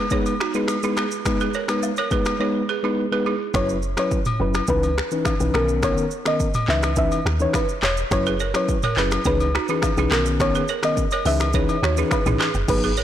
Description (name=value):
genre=afrobeats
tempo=105 BPM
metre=4/4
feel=straight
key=unclear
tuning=A4 = 438 Hz
part: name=mellow tine electric piano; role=accompaniment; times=0.0-12.9 s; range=D#3 to B4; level=-24 LUFS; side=left 3 dB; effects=none
part: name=balafon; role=riff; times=0.1-3.4, 8.3-13.0 s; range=D#4 to C#5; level=-26 LUFS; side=right 8 dB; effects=ping-pong delay
part: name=afro-pop drum kit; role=drums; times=0.1-13.0 s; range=crash cymbal, finger snaps, handclaps, hi-hat, kick drum, rim click, shaker, toms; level=-25 LUFS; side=equal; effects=soft clipping on snare
part: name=agogo bells and woodblock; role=percussion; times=0.3-12.8 s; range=none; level=-30 LUFS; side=left 4 dB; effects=none
part: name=deep log drum bass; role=bass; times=3.5-13.0 s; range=E1 to D#2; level=-24 LUFS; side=equal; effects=none
part: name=soft round pluck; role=melody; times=3.6-12.8 s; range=A#4 to E5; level=-26 LUFS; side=right 1 dB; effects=chorus, ping-pong delay
room=light reverb, digital ambience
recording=blown-out, overdriven recording, overdrive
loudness=-19 LUFS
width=side -11 dB against mid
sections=0.0-3.5 A section; 3.5-12.7 B section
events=none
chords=0.0 G#m; 3.5 F#7sus4; 4.7 C#m9; 5.5 Bmaj9; 6.7 C#m9; 8.1 F#7sus4; 9.3 C#m9; 10.1 Bmaj9; 11.3 C#m9